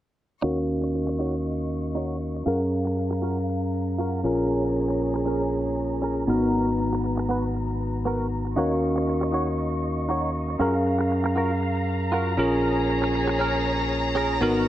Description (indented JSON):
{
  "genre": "nu-disco",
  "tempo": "118 BPM",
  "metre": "4/4",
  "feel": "swing 55% on 16ths",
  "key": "unclear",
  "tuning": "A4 = 439 Hz",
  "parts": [
    { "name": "bell-like tine electric piano", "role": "accompaniment", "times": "0.4-14.7 s", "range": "B3 to A#5", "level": "-25 LUFS", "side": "equal", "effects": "low-pass filter, tape echo" },
    { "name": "warm studio violin section", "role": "sustained chords", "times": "0.4-14.7 s", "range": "B3 to C#6", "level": "-32 LUFS", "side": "equal", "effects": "none" },
    { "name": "direct-recorded clean electric guitar", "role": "riff", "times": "0.4-14.7 s", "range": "B3 to C#5", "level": "-31 LUFS", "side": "right 2 dB", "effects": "analog chorus, low-pass filter, tape echo" },
    { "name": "fingered electric bass with an envelope filter", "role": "bass", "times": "0.4-14.7 s", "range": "G#1 to F#2", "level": "-28 LUFS", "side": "equal", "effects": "none" }
  ],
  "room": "light reverb, digital ambience",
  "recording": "low-pass filter",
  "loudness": "-22 LUFS",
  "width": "side -13 dB against mid",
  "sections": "0.4-14.7 A section",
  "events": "filter sweep on clean electric guitar 0.4-14.7; filter sweep on tine electric piano 0.4-14.7; filter sweep 0.4-14.7",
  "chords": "0.4 D#m7; 2.5 F#maj7; 4.2 A#m7; 6.3 G#m9; 8.6 D#m7; 10.6 F#maj7; 12.4 A#m7"
}